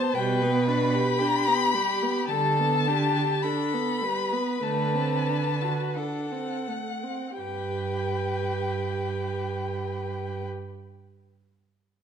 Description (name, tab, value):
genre	classical, slow romantic movement for string quartet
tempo	40-59 BPM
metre	4/4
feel	rubato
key	G major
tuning	A4 = 441 Hz
part	rich violin	melody	0.0-10.4 s	F#5 to B5	-29 LUFS	left 5 dB	none
part	rich violin	second line	0.0-10.5 s	G4 to C5	-31 LUFS	left 2 dB	none
part	rich viola	accompaniment	0.0-10.5 s	G3 to G4	-30 LUFS	right 3 dB	none
part	clear cello	bass	0.1-10.5 s	G2 to D3	-30 LUFS	right 4 dB	none
room	wet recital hall reverb, RT60 1.5 s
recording	none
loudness	-24 LUFS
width	side -8 dB against mid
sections	0.0-7.4 A section; 7.4-12.0 B section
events	slowing down 0.0-7.4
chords	0.1 G/B; 2.3 G/D; 4.6 D7; 7.4 G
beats	0.15 1.19 | 2.29 3.42 4.62 5.95 | 7.38 8.75 10.14